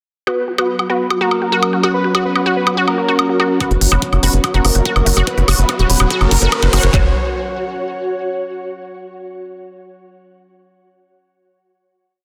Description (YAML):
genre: psychedelic trance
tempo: 144 BPM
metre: 4/4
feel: straight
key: F# major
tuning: A4 = 440 Hz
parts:
  - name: unison lead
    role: melody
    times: 0.3-7.1 s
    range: A#4 to C#5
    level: -24 LUFS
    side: equal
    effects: phaser, sidechain pumping, tape echo
  - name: overtone-sweeping drone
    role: sustained chords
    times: 0.7-7.0 s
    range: F#3 to C#4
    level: -26 LUFS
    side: equal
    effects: chorus, built-in reverb, sidechain pumping
  - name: unison pluck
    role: riff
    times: 0.3-7.1 s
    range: F#4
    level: -22 LUFS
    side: equal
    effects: cassette tape, sidechain pumping, tape echo
  - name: electronic woodblock and hi-hat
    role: drums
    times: 0.3-6.9 s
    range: none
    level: -22 LUFS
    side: equal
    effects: high-pass filter on perc, high-pass filter on hats, high-pass filter on room
  - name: ethereal airy pad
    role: texture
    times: 1.5-8.6 s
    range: F#4 to F#5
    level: -28 LUFS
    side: equal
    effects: ensemble chorus, built-in reverb, sidechain pumping
  - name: drum and bass drum kit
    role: drums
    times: 3.6-7.0 s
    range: handclaps, kick drum, toms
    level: -20 LUFS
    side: equal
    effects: high-pass filter on kick, high-pass filter on snare, high-pass filter on toms, high-pass filter on room
  - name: riser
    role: sound effects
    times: 5.4-6.9 s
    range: none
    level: -29 LUFS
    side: equal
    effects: none
  - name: tight sequencer bass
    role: bass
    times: 3.7-7.1 s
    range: E1 to G1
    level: -16 LUFS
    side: equal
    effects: none
  - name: vowel-sweep wobble bass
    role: second line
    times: 4.6-6.9 s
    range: A#3 to C#4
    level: -35 LUFS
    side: equal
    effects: none
room: moderate lush hall reverb, RT60 1.8 s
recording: dense, heavily limited modern master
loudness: -16 LUFS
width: mono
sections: 0.3-3.6 intro; 3.6-6.9 build; 6.9-8.6 final chord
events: filter sweep on synth arpeggio sound 0.3-3.6; filter sweep on synth drone 0.3-3.6; build-up 3.6-6.9; riser 5.4-6.9; drum fill 5.3-6.9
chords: 0.3 F#5